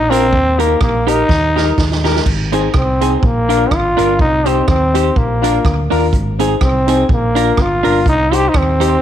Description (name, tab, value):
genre	ska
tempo	124 BPM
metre	4/4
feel	swing 55% on 8ths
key	Eb major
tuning	A4 = 440 Hz
part	growling trombone	melody	0.0-9.0 s	Bb3 to G4	-16 LUFS	equal	none
part	fingered electric bass	bass	0.0-9.0 s	G1 to Eb2	-18 LUFS	equal	none
part	hollow-body jazz guitar	accompaniment	0.1-9.0 s	C4 to C5	-21 LUFS	right 10 dB	slapback echo
part	clear upright piano	stabs	0.1-8.9 s	C4 to C5	-20 LUFS	left 11 dB	none
part	swinging big-band drum kit	drums	0.1-8.9 s	crash cymbal, hi-hat, kick drum, rim click, snare drum	-18 LUFS	right 1 dB	slapback echo
room	light reverb, small room ambience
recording	1960s-style stereo with parts hard left and right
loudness	-11 LUFS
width	side -10 dB against mid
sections	0.0-2.3 A section; 2.3-9.0 B section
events	drum fill 1.3-2.3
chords	0.3 Eb; 2.3 Ab; 3.2 Bb; 4.2 Cm; 5.2 Bb; 6.1 Ab; 7.1 Bb; 8.1 Cm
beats	| 0.32 0.81 1.29 1.78 | 2.26 2.74 3.23 3.71 | 4.20 4.68 5.16 5.65 | 6.13 6.61 7.09 7.58 | 8.06 8.54